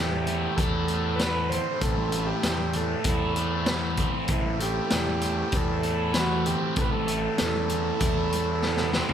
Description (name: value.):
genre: psychedelic rock.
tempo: 97 BPM.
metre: 4/4.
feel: straight.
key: A minor.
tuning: A4 = 440 Hz.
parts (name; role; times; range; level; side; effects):
overdriven combo organ; melody; 0.0-8.9 s; E4 to C5; -30 LUFS; right 5 dB; spring reverb, tape echo.
tonewheel organ; sustained chords; 0.0-9.1 s; C4 to E5; -39 LUFS; right 4 dB; none.
fuzz guitar; riff; 0.0-9.1 s; A2 to E4; -29 LUFS; left 1 dB; distortion, phaser.
fuzz fingered electric bass; bass; 0.0-9.0 s; A1 to E2; -30 LUFS; left 1 dB; overdrive.
congas; percussion; 0.1-9.1 s; none; -40 LUFS; left 4 dB; none.
raw garage drum kit; drums; 0.3-9.1 s; hi-hat, kick drum, snare drum, toms; -28 LUFS; left 1 dB; none.
room: light reverb.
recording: none.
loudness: -23 LUFS.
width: side -9 dB against mid.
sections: 0.0-9.1 A section.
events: drum fill 8.6-9.1.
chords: 0.0 Am.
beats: 0.58 1.20 | 1.82 2.44 3.06 3.68 | 4.30 4.92 5.54 6.16 | 6.78 7.40 8.02 8.63.